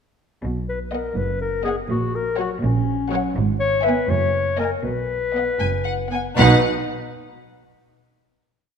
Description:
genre	cinematic, playful, whimsical film cue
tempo	81 BPM (dotted quarters)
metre	6/8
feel	uneven beats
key	B major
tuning	A4 = 436 Hz
part	rich symphonic cello section	bass	0.4-6.7 s	F#2 to B2	-25 LUFS	right 3 dB	none
part	warm symphonic double bass section	bass	0.4-6.7 s	F#1 to B1	-25 LUFS	right 2 dB	none
part	warm clarinet	second line	0.7-6.6 s	C#4 to C#5	-23 LUFS	left 4 dB	none
part	warm symphonic violin section	melody	0.9-6.7 s	F#5 to G#5	-26 LUFS	left 2 dB	none
part	warm studio violin section	second line	0.9-6.7 s	B4 to G#5	-28 LUFS	left 1 dB	none
part	rich chamber viola section	accompaniment	0.9-6.7 s	F#3 to D#4	-26 LUFS	right 2 dB	none
room	moderate scoring stage reverb, RT60 1.8 s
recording	none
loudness	-19 LUFS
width	side -7 dB against mid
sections	0.4-6.4 A section; 6.4-7.9 final chord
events	none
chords	0.4 B; 1.9 F#/A#; 3.4 E/G#; 4.1 F#69; 4.8 B5; 6.4 B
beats	| 0.44 1.18 | 1.91 2.63 | 3.36 4.09 | 4.84 5.60 | 6.37

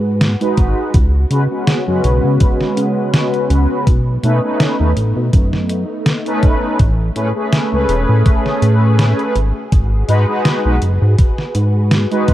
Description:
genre	vaporwave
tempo	82 BPM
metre	4/4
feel	swing 55% on 16ths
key	unclear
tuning	A4 = 440 Hz
part	soft string machine	sustained chords	0.0-12.3 s	C#3 to B4	-24 LUFS	equal	phaser, ensemble chorus
part	chorused synth bass	bass	0.0-12.3 s	E1 to C#3	-14 LUFS	equal	none
part	detuned 8-bit digital drum machine	drums	0.2-12.3 s	hi-hat, snare drum	-17 LUFS	equal	none
part	mellow synth brass	accompaniment	0.4-12.3 s	G#3 to B4	-18 LUFS	equal	lush chorus, vintage 12-bit sampler grit, tape echo
part	electronic kick drum	drums	0.6-12.3 s	none	-13 LUFS	equal	none
room	little or no reverb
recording	dark, warm production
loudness	-12 LUFS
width	side -14 dB against mid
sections	0.0-12.3 A section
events	none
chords	0.0 G#m7; 0.9 C#7sus4; 3.9 B9; 6.8 Amaj9; 9.4 G#m7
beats	0.21 | 0.94 1.67 2.41 3.14 | 3.87 4.60 5.33 6.06 | 6.80 7.53 8.26 8.99 | 9.72 10.46 11.19 11.92

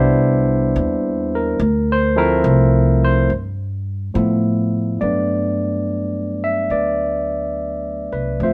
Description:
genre	jazz ballad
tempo	71 BPM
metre	4/4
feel	swing 66% on 8ths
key	G major from 5.0 s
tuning	A4 = 440 Hz
part	barky tine electric piano	accompaniment	0.0-8.5 s	F3 to E5	-20 LUFS	equal	none
part	upright bass	bass	0.0-8.5 s	C2 to A2	-22 LUFS	equal	none
room	moderate studio reverb, RT60 0.8 s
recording	band playing live in one room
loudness	-19 LUFS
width	mono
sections	0.0-5.0 A section; 5.0-8.5 B section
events	none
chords	0.0 Cmaj9; 1.6 Dm7; 3.3 G9; 5.0 Gmaj9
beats	0.77 | 1.60 2.45 3.30 4.16 | 5.01 5.86 6.71 7.56 | 8.41

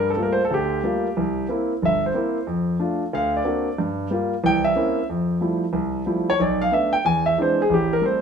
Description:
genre	jazz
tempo	184 BPM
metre	4/4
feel	swing 64% on 8ths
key	F major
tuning	A4 = 441 Hz
part	warm concert grand piano	solo	0.0-8.2 s	G1 to G#5	-19 LUFS	equal	none
room	moderate studio reverb, RT60 0.8 s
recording	minimal, uncompressed stereo recording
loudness	-19 LUFS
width	side -6 dB against mid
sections	0.0-5.1 A section; 5.1-8.2 A section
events	grand piano solo 0.0-8.2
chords	0.0 Gm9; 1.2 C7; 2.5 F6; 3.1 Daug7; 3.8 Gm7; 4.4 C7b9; 5.1 Fmaj9; 6.4 Bm7b5; 7.0 Eaug7; 7.7 Am7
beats	0.18 0.51 0.83 | 1.16 1.49 1.81 2.14 | 2.47 2.79 3.12 3.45 | 3.77 4.10 4.43 4.75 | 5.08 5.41 5.73 6.06 | 6.39 6.71 7.04 7.37 | 7.70 8.02

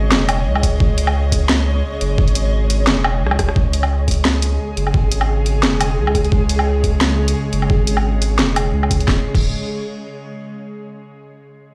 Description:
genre	half-time drum and bass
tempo	174 BPM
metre	4/4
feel	swing 55% on 16ths, half-time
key	C# minor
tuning	A4 = 443 Hz
part	bowed-like drone	sustained chords	0.0-9.2 s	C#3 to D#5	-27 LUFS	equal	built-in reverb, sidechain pumping
part	saturated sub bass	bass	0.0-9.5 s	C#1 to C#2	-20 LUFS	equal	none
part	flickering grainy texture	texture	0.0-9.1 s	G#4 to C#5	-31 LUFS	equal	built-in reverb
part	drum and bass drum kit	drums	0.1-9.4 s	crash cymbal, hi-hat, rim click, snare drum, woodblock	-22 LUFS	equal	none
part	electronic kick drum	drums	0.6-9.4 s	none	-20 LUFS	equal	overdrive
room	light reverb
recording	played on a big sound system in a bare room, stone room reverb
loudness	-17 LUFS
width	mono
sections	0.0-3.6 A section; 3.6-9.1 B section; 9.1-10.5 C section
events	drop 0.0-3.6; drum fill 3.2-3.6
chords	0.0 C#5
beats	0.11 0.46 | 0.80 1.15 1.49 1.84 | 2.18 2.53 2.87 3.22 | 3.56 3.91 4.25 4.60 | 4.94 5.29 5.63 5.97 | 6.32 6.67 7.01 7.35 | 7.70 8.04 8.39 8.73 | 9.08 9.42

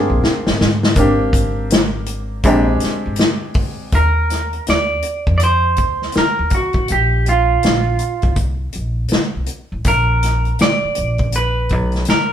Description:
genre	R&B, neo-soul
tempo	81 BPM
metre	4/4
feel	swing 62% on 16ths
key	Bb major from 3.9 s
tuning	A4 = 440 Hz
part	semi-hollow electric guitar	melody	0.0-12.3 s	F4 to D5	-18 LUFS	right 2 dB	none
part	clear baby grand piano	accompaniment	0.0-3.9 s	Ab3 to Ab4	-19 LUFS	equal	none
part	hollow soft pad	sustained chords	0.0-0.9 s	Bb4 to C6	-35 LUFS	equal	none
part	upright bass	bass	0.1-12.1 s	Ab1 to Ab2	-19 LUFS	equal	none
part	unplugged drum kit	drums	0.2-12.3 s	hi-hat, kick drum, snare drum	-18 LUFS	left 1 dB	none
room	moderate stone room reverb, RT60 0.9 s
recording	band playing live in one room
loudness	-14 LUFS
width	side -9 dB against mid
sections	1.0-3.9 A section; 3.9-12.3 B section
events	drum fill 0.0-1.0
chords	0.0 Abmaj9; 3.9 Ebsus2; 6.9 Bb5; 9.8 Bb(b9)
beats	0.22 | 0.96 1.70 2.44 3.18 | 3.92 4.67 5.41 6.15 | 6.89 7.63 8.37 9.11 | 9.85 10.59 11.33 12.07

